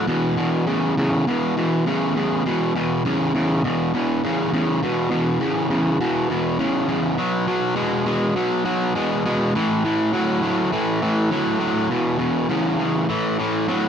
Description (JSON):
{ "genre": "rock", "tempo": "101 BPM", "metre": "4/4", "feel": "straight", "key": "unclear", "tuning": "A4 = 436 Hz", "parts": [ { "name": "overdriven semi-hollow guitar", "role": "solo", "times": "0.0-13.9 s", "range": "E2 to G#3", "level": "-19 LUFS", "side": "equal", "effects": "tape echo" } ], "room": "moderate booth ambience, RT60 0.3 s", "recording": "dry, close 1970s-style studio recording", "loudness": "-19 LUFS", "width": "side -8 dB against mid", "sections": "0.0-13.9 A section", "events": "none", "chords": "0.1 E5; 7.2 B5; 9.6 A5; 11.9 E5; 13.1 A5" }